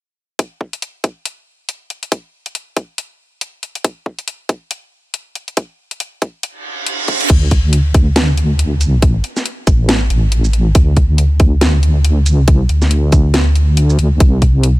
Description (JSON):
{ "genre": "deep dubstep", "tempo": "139 BPM", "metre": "4/4", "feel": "swing 58% on 16ths, half-time", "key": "unclear", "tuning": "A4 = 438 Hz", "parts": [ { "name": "electronic kick drum", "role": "drums", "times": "0.4-14.5 s", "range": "none", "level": "-12 LUFS", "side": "equal", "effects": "high-pass filter on kick" }, { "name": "garage drum kit", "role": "drums", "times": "0.4-14.7 s", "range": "crash cymbal, hi-hat, shaker, snare drum", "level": "-19 LUFS", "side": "equal", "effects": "none" }, { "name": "reverse cymbal", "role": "sound effects", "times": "6.6-7.3 s", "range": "none", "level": "-21 LUFS", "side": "right 4 dB", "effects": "none" }, { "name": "deep soft wobble bass", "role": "bass", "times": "7.3-14.8 s", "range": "A1 to D2", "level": "-12 LUFS", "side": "equal", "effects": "chorus" } ], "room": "digital ambience", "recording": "none", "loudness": "-12 LUFS", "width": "side -18 dB against mid", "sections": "0.4-7.3 A section; 7.3-14.8 B section", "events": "reverse cymbal 6.6-7.3", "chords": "none" }